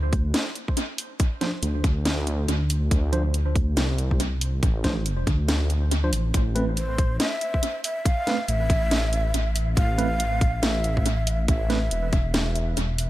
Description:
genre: deep dubstep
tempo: 140 BPM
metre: 4/4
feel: swing 60% on 16ths, half-time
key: A minor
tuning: A4 = 440 Hz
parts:
  - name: dark detuned saw bass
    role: bass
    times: 0.0-13.1 s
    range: E1 to D2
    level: -24 LUFS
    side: equal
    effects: none
  - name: electronic kick drum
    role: drums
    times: 0.1-12.2 s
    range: none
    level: -22 LUFS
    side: equal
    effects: none
  - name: garage drum kit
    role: drums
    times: 0.1-13.1 s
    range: hi-hat, snare drum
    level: -28 LUFS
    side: equal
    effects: tape echo
  - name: mellow tine electric piano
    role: stabs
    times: 1.4-11.8 s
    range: F3 to C5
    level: -32 LUFS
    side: right 2 dB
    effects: medium stereo tremolo, dub echo
  - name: breathy bright ney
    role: melody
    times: 6.8-12.7 s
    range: C5 to F5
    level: -28 LUFS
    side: equal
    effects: dub echo
room: little or no reverb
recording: echo-heavy mix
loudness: -21 LUFS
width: side -15 dB against mid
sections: 0.0-13.1 A section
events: kick drops out 5.9-6.3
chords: 0.0 D7(no3); 6.3 A5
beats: 0.34 0.77 | 1.20 1.63 2.06 2.48 | 2.91 3.34 3.77 4.20 | 4.63 5.05 5.48 5.91 | 6.34 6.77 7.20 7.63 | 8.05 8.48 8.91 9.34 | 9.77 10.20 10.63 11.05 | 11.48 11.91 12.34 12.77

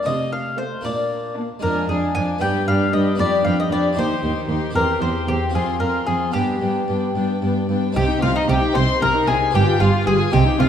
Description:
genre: classical, baroque-style concerto movement with solo episodes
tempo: 76 BPM (dotted quarters)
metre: 6/8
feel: straight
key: C minor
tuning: A4 = 440 Hz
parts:
  - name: mandolin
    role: melody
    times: 0.0-10.7 s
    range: Eb4 to Ab5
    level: -23 LUFS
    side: left 3 dB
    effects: none
  - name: harpsichord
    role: accompaniment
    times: 0.0-10.7 s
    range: Eb2 to G4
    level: -25 LUFS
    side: left 1 dB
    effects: none
  - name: warm chamber cello section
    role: bass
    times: 0.1-10.7 s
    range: Eb2 to C3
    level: -24 LUFS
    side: right 3 dB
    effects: none
  - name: rich chamber violin section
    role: melody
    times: 0.6-10.7 s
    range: Eb5 to C6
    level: -29 LUFS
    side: left 4 dB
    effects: none
  - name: dark studio violin section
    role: second line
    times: 0.6-10.7 s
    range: C4 to C5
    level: -28 LUFS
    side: left 2 dB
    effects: none
  - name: dark chamber viola section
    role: accompaniment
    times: 0.6-10.7 s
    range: A3 to G4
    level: -25 LUFS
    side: equal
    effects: none
  - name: rich chamber double bass section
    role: bass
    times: 8.0-10.7 s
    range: G1 to C2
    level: -22 LUFS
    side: right 3 dB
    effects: none
room: moderate concert hall reverb, RT60 2.2 s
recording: dark, warm production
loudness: -17 LUFS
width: side -9 dB against mid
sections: 0.0-8.0 A section; 8.0-10.7 B section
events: none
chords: 0.1 F/C; 0.9 Bb; 1.6 Ddim/F; 2.4 G; 3.2 G7/F; 4.0 Cm/Eb; 4.8 C/E; 5.5 F5; 6.3 G; 8.0 Cm; 9.5 G7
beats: | 0.07 0.85 | 1.63 2.42 | 3.19 3.97 | 4.75 5.54 | 6.34 7.16 | 7.96 8.76 | 9.54 10.33

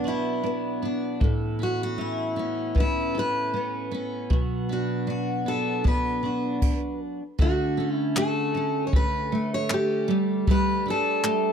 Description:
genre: acoustic pop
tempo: 78 BPM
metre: 4/4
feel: straight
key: unclear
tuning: A4 = 436 Hz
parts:
  - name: picked steel-string acoustic guitar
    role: melody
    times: 0.0-11.5 s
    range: E4 to C#5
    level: -28 LUFS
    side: equal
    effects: none
  - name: picked steel-string acoustic guitar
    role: accompaniment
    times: 0.0-11.5 s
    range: A2 to G4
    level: -27 LUFS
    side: equal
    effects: double-tracked left and right
  - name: twelve-string electric guitar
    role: arpeggios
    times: 0.0-11.5 s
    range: E3 to A4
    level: -35 LUFS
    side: right 4 dB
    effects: none
  - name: jazz brush drum kit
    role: drums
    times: 1.2-11.4 s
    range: crash cymbal, handclaps, kick drum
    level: -24 LUFS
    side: equal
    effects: none
room: small room ambience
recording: dry, close 1970s-style studio recording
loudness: -23 LUFS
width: side -7 dB against mid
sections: 0.0-7.4 A section; 7.4-11.5 B section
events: stop 6.6-7.4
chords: 0.0 Bm; 1.2 Aadd9; 4.3 Bm; 7.4 Dmaj7; 10.1 Gsus2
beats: 0.44 | 1.22 1.99 2.76 3.54 | 4.31 5.08 5.86 6.63 | 7.40 8.17 8.94 9.71 | 10.48 11.25

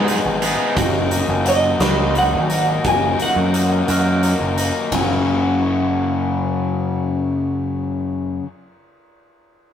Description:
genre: indie rock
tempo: 58 BPM (dotted quarters)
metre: 6/8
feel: straight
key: F# major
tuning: A4 = 438 Hz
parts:
  - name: crunchy overdriven guitar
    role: riff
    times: 0.0-8.5 s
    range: F#2 to A#4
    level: -20 LUFS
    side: left 4 dB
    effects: none
  - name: overdriven electric guitar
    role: riff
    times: 0.0-0.8 s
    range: G#3 to G#4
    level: -24 LUFS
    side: right 4 dB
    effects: none
  - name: growling picked electric bass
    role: bass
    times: 0.0-8.4 s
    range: F#1 to G#2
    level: -21 LUFS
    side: right 1 dB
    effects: overdrive
  - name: big rock drum kit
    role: drums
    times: 0.1-5.1 s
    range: hi-hat, kick drum, ride cymbal, snare drum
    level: -24 LUFS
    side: right 1 dB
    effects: none
  - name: twelve-string electric guitar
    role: melody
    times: 1.5-4.5 s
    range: D#5 to G#5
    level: -20 LUFS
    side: right 2 dB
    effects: none
room: light reverb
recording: rough rehearsal-room recording, tube saturation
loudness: -16 LUFS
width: side -9 dB against mid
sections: 0.0-4.9 A section; 4.9-9.1 B section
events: clean electric guitar solo 0.0-4.9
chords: 0.0 G#m; 0.8 D#m/F#; 4.9 F#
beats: | 0.77 1.80 | 2.84 3.88 | 4.92 5.96 | 7.00 8.04

